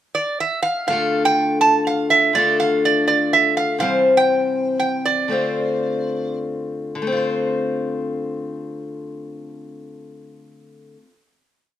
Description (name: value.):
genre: acoustic folk duo or small band.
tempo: 93-124 BPM.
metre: 3/4.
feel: straight.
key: D minor.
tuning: A4 = 440 Hz.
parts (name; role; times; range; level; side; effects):
metal-body resonator slide guitar; melody; 0.1-6.4 s; D5 to A5; -18 LUFS; right 3 dB; none.
picked steel-string acoustic guitar; accompaniment; 0.9-11.2 s; C3 to C5; -20 LUFS; left 3 dB; none.
room: moderate large studio reverb, RT60 0.9 s.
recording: none.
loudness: -17 LUFS.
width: side -11 dB against mid.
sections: 0.0-0.9 pickup bar; 0.9-7.0 A section; 7.0-10.9 final chord.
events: slowing down 3.8-7.0.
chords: 0.0 N.C.; 0.9 Dm; 3.8 C; 5.3 Dm7.